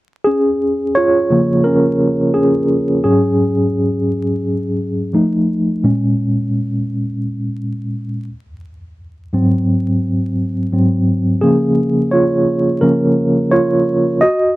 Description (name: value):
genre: R&B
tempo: 86 BPM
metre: 4/4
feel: swing 59% on 16ths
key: unclear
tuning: A4 = 439 Hz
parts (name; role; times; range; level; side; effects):
- mellow tine electric piano; solo; 0.2-14.6 s; Ab2 to Eb5; -13 LUFS; equal; medium tremolo
room: little or no reverb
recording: dry, close 1970s-style studio recording, vinyl crackle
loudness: -13 LUFS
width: side -18 dB against mid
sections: 0.2-14.6 A section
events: tine electric piano solo 0.2-14.6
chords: 0.2 Db6; 3.0 Ab7sus4; 5.1 F7; 5.8 Bbm7; 8.3 Ab7; 11.4 Db6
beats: | 0.25 0.95 1.65 2.34 | 3.04 3.74 4.43 5.13 | 5.83 6.53 7.23 7.92 | 8.62 9.32 10.02 10.71 | 11.41 12.11 12.81 13.51 | 14.20